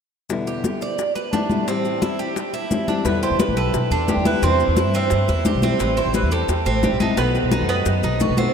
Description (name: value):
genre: latin, Cuban son and guajira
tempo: 175 BPM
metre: 4/4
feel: straight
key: E minor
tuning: A4 = 440 Hz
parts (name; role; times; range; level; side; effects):
- nylon-string guitar; accompaniment; 0.3-8.5 s; E2 to F#4; -26 LUFS; left 4 dB; none
- bongos; percussion; 0.3-8.5 s; none; -30 LUFS; left 7 dB; none
- congas; percussion; 0.3-8.5 s; none; -26 LUFS; left 2 dB; none
- maracas; percussion; 0.3-8.5 s; none; -39 LUFS; left 12 dB; none
- Cuban tres; arpeggios; 0.5-8.5 s; B3 to D5; -24 LUFS; right 4 dB; none
- Cuban tres; melody; 3.0-8.3 s; G4 to E5; -24 LUFS; right 2 dB; none
- upright bass; bass; 3.0-8.5 s; A1 to G2; -22 LUFS; equal; none
room: wet huge ambient reverb, RT60 7.6 s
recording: in a vast, echoing space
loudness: -18 LUFS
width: side -7 dB against mid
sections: 0.3-3.1 A section; 3.1-8.5 B section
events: none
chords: 0.3 Em7; 1.7 Am7; 3.1 Em7; 4.4 C/E; 5.8 Am7; 7.2 B7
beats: | 0.30 0.64 0.99 1.33 | 1.68 2.02 2.36 2.71 | 3.05 3.40 3.74 4.08 | 4.42 4.77 5.11 5.46 | 5.80 6.14 6.49 6.83 | 7.17 7.52 7.86 8.20